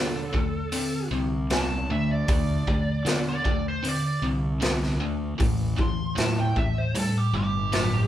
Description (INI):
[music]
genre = blues rock power trio and southern rock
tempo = 77 BPM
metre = 4/4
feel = straight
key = unclear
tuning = A4 = 440 Hz
[part]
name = smooth overdriven lead guitar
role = melody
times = 0.0-8.1 s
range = G4 to C6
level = -31 LUFS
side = right 2 dB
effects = wah
[part]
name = cranked stack guitar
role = riff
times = 0.0-8.1 s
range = A2 to C4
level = -27 LUFS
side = equal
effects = overdrive
[part]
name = fuzz fingered electric bass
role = bass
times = 0.0-8.1 s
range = G1 to D3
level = -29 LUFS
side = equal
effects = overdrive
[part]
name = raw garage drum kit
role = drums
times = 0.3-7.9 s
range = hi-hat, kick drum, snare drum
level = -27 LUFS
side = equal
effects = none
[sound]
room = moderate large studio reverb, RT60 0.9 s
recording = band playing live in one room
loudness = -23 LUFS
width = side -12 dB against mid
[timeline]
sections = 0.0-8.1 A section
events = none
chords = 0.0 D5; 5.4 A5